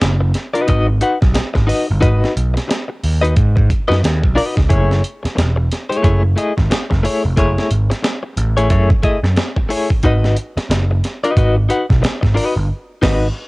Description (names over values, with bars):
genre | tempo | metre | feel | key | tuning
funk | 90 BPM | 4/4 | swing 60% on 16ths | unclear | A4 = 440 Hz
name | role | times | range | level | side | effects
direct-recorded clean electric guitar | accompaniment | 0.0-13.3 s | A3 to F#5 | -18 LUFS | left 2 dB | tremolo, cassette tape
overdriven picked electric bass | bass | 0.0-13.3 s | E1 to G#2 | -15 LUFS | equal | none
breakbeat sampler-style drum kit | drums | 0.0-13.3 s | crash cymbal, hi-hat, kick drum, snare drum | -18 LUFS | equal | cassette tape
room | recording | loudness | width
little or no reverb | home recording on cassette | -13 LUFS | side -23 dB against mid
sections
0.0-13.5 A section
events
band accent 12.7-13.5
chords
0.0 G#m7; 4.7 F#m9; 10.0 G#m7